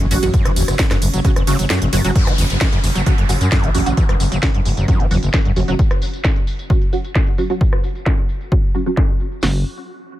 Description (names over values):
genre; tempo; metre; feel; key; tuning
driving peak-time techno; 132 BPM; 4/4; straight; F# minor; A4 = 441 Hz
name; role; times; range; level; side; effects
screaming distorted acid line; riff; 0.0-5.7 s; F#1 to F#3; -22 LUFS; equal; distortion, analog chorus, cassette tape, sidechain pumping, ping-pong delay
growling FM bass; bass; 0.0-5.7, 9.4-9.6 s; F#1 to F#2; -20 LUFS; equal; sidechain pumping
swarming drone; drone; 0.0-2.2 s; F#3 to C#4; -31 LUFS; right 1 dB; built-in reverb, sidechain pumping
techno drum kit; drums; 0.0-9.4 s; hi-hat, ride cymbal, rim click, snare drum, tambourine; -24 LUFS; equal; low-pass filter on hats, low-pass filter on cymbals, low-pass filter on perc, low-pass filter on snare, low-pass filter on room
filtered dub chord stab; stabs; 0.1-9.6 s; F#3 to F#4; -25 LUFS; right 3 dB; phaser, ensemble chorus, cassette tape, sidechain pumping, ping-pong delay
punchy analog drum machine; drums; 0.3-9.5 s; hi-hat, kick drum, snare drum; -17 LUFS; equal; none
downlifter; sound effects; 2.2-5.8 s; none; -28 LUFS; equal; none
room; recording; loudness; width
little or no reverb; none; -14 LUFS; side -14 dB against mid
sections
0.0-2.2 A section; 2.2-9.4 B section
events
drop 0.0-2.2; kick drops out 1.7-2.2; filter sweep on drum 2.2-9.4; filter sweep on synth stab 2.2-9.4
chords
0.0 F#5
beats
| 0.34 0.79 1.25 1.70 | 2.15 2.61 3.06 3.52 | 3.97 4.43 4.88 5.34 | 5.79 6.25 6.70 7.16 | 7.61 8.06 8.52 8.97 | 9.43